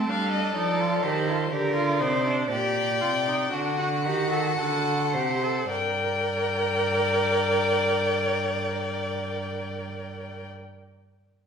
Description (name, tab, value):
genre	classical, baroque-style fugue for string quartet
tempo	52-64 BPM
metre	4/4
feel	straight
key	G minor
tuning	A4 = 437 Hz
part	warm violin	second line	0.0-10.5 s	F#4 to D5	-29 LUFS	left 2 dB	none
part	warm viola	accompaniment	0.0-10.5 s	C4 to Bb4	-28 LUFS	right 2 dB	none
part	warm cello	bass	0.0-10.5 s	G2 to G3	-30 LUFS	right 4 dB	none
part	warm violin	melody	0.1-10.5 s	C5 to G5	-29 LUFS	left 6 dB	none
room	wet recital hall reverb, RT60 1.3 s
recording	recorded in a church or concert hall, lossy compression artefacts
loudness	-23 LUFS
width	side -6 dB against mid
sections	0.0-5.7 A section; 5.7-10.3 B section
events	slowing down 0.0-5.7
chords	0.0 Am7b5; 1.5 Gm; 3.5 D7; 5.7 Gm